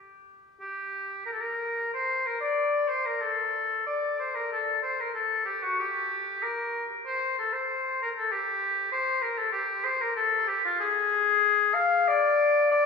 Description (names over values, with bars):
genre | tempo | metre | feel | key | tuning
classical, baroque-style fantasia for unaccompanied oboe | 94 BPM | 4/4 | rubato | G minor | A4 = 439 Hz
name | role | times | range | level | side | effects
clear oboe | solo | 0.6-12.9 s | F4 to F5 | -24 LUFS | left 3 dB | none
room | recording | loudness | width
wet church reverb, RT60 3.0 s | heard from further back in the room, studio reverb | -25 LUFS | side -5 dB against mid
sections
0.6-12.9 A section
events
none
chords
none